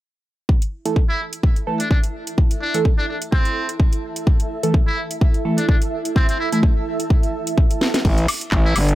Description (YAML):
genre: bass house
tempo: 127 BPM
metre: 4/4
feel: swing 55% on 16ths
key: unclear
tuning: A4 = 440 Hz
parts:
  - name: electronic kick drum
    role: drums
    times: 0.5-8.6 s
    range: none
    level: -16 LUFS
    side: equal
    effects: none
  - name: granular cloud pad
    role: texture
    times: 1.7-8.9 s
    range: E4 to E5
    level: -28 LUFS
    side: right 3 dB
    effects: built-in reverb, sidechain pumping
  - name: house drum kit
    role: drums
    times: 0.6-8.9 s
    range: crash cymbal, handclaps, hi-hat, snare drum, woodblock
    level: -24 LUFS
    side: equal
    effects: none
  - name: band-passed chord stab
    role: stabs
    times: 0.9-6.6 s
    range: E3 to A4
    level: -23 LUFS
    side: right 2 dB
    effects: phaser, cassette tape, sidechain pumping, digital delay
  - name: trumpet with metal mute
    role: melody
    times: 1.1-8.8 s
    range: C4 to E4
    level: -26 LUFS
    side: equal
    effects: digital delay
  - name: growling FM bass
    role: bass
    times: 8.0-8.9 s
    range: G1 to A1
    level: -16 LUFS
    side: equal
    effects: sidechain pumping
  - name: dusty soul sampler-style drum kit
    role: drums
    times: 8.0-8.9 s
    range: ride cymbal, snare drum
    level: -39 LUFS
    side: right 2 dB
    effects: none
room: little or no reverb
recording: none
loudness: -17 LUFS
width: side -15 dB against mid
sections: 0.5-8.0 A section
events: drum fill 7.8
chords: 0.5 A5